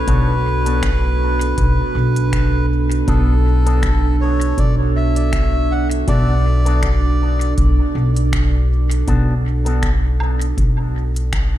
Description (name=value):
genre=ambient dub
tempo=80 BPM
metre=4/4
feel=swing 56% on 16ths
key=B minor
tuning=A4 = 440 Hz
part: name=melodica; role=melody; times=0.0-7.5 s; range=A4 to F#5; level=-25 LUFS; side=left 1 dB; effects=dub echo
part: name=deep dark ambient pad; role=sustained chords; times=0.0-11.6 s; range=B3 to A4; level=-24 LUFS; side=right 6 dB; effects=chorus, built-in reverb
part: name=upright bass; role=bass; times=0.0-11.6 s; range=B1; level=-16 LUFS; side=equal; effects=tube saturation
part: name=electric guitar with an envelope filter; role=stabs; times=0.1-9.9 s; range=B3 to A4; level=-29 LUFS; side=left 3 dB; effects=spring reverb, dub echo
part: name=electronic kick drum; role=drums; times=0.1-11.5 s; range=none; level=-21 LUFS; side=equal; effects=none
part: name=organic electronic drum kit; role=drums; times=0.1-11.5 s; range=finger snaps, hi-hat, woodblock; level=-31 LUFS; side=equal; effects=overdrive, dub echo
room=light reverb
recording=none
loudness=-14 LUFS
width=side -13 dB against mid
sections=0.0-11.6 A section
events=none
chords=0.0 Bm7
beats=| 0.08 0.83 1.58 2.33 | 3.08 3.83 4.58 5.33 | 6.08 6.83 7.58 8.33 | 9.08 9.83 10.58 11.33